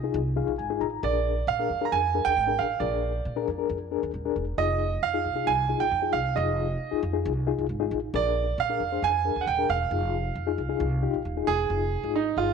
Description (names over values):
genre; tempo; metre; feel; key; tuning
uptempo 1960s-style soul; 135 BPM; 4/4; straight; F dorian; A4 = 440 Hz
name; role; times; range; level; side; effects
mellow reed electric piano; accompaniment; 0.0-12.5 s; D4 to Bb5; -30 LUFS; left 12 dB; fast tremolo
upright bass; bass; 0.0-12.5 s; Eb1 to Bb2; -30 LUFS; equal; none
bright concert grand piano; melody; 1.0-12.5 s; Eb4 to Bb5; -26 LUFS; right 10 dB; none
room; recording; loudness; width
moderate echo chamber reverb, RT60 1.7 s, small room ambience; 1960s-style stereo with parts hard left and right; -24 LUFS; side -6 dB against mid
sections
0.0-11.7 A section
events
reed electric piano fill 0.1-1.0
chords
0.0 Fm7; 1.0 Bb7; 4.6 Fm7; 8.1 Bb7; 9.9 Fm7